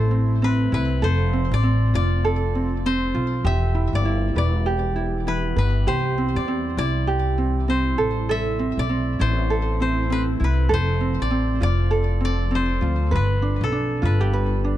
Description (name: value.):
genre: acoustic pop.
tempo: 99 BPM.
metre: 4/4.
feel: swing 60% on 16ths.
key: unclear.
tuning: A4 = 438 Hz.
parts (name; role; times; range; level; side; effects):
koto; melody; 0.0-14.8 s; A4 to E5; -28 LUFS; left 2 dB; ping-pong delay.
ukulele; accompaniment; 0.0-14.8 s; C4 to B4; -25 LUFS; right 3 dB; none.
granular cloud pad; sustained chords; 0.0-14.8 s; C3 to B4; -32 LUFS; left 3 dB; built-in reverb.
upright bass; bass; 0.0-14.8 s; E1 to E2; -21 LUFS; equal; none.
room: little or no reverb.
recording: dark, warm production.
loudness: -19 LUFS.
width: side -13 dB against mid.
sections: 0.0-14.8 A section.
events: none.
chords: 0.0 Am; 1.0 F; 3.4 Em; 5.9 C; 8.0 Am; 10.7 F; 13.1 G.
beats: 0.42 | 1.03 1.63 2.24 2.84 | 3.45 4.05 4.66 5.26 | 5.87 6.47 7.08 7.68 | 8.29 8.89 9.50 10.10 | 10.71 11.31 11.92 12.52 | 13.12 13.73 14.33.